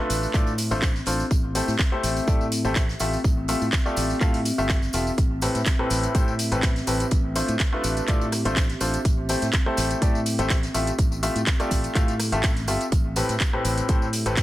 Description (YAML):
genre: piano house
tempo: 124 BPM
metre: 4/4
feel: swing 53% on 16ths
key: unclear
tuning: A4 = 440 Hz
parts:
  - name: clear concert grand piano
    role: riff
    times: 0.0-14.4 s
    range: A2 to F5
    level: -27 LUFS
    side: left 1 dB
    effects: sidechain pumping, low-pass filter, tape echo
  - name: warbly tape-like pad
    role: texture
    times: 0.0-14.4 s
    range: C4 to E5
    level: -32 LUFS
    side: left 1 dB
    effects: chorus, built-in reverb, sidechain pumping
  - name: modern bright fingered electric bass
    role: bass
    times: 0.1-14.4 s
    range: E1 to A2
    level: -28 LUFS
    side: equal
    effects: sidechain pumping
  - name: house drum kit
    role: drums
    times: 0.1-14.4 s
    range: handclaps, hi-hat, rim click, tambourine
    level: -29 LUFS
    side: equal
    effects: none
  - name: natural country drum kit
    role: drums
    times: 0.1-14.4 s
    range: hi-hat, snare drum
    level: -39 LUFS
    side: right 2 dB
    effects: none
  - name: tambourine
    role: percussion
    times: 0.1-14.4 s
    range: none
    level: -39 LUFS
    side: right 3 dB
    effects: none
  - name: electronic kick drum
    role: drums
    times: 0.3-14.4 s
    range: none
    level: -22 LUFS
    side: equal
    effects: none
room: small room ambience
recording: none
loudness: -21 LUFS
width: side -15 dB against mid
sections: 0.0-14.4 A section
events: none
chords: 0.0 Dm7/A; 1.3 C6/A; 3.0 Fmaj9/A; 5.2 Am9; 7.1 Dm7/A; 9.1 C6/A; 10.7 Fmaj9/A; 12.9 Am9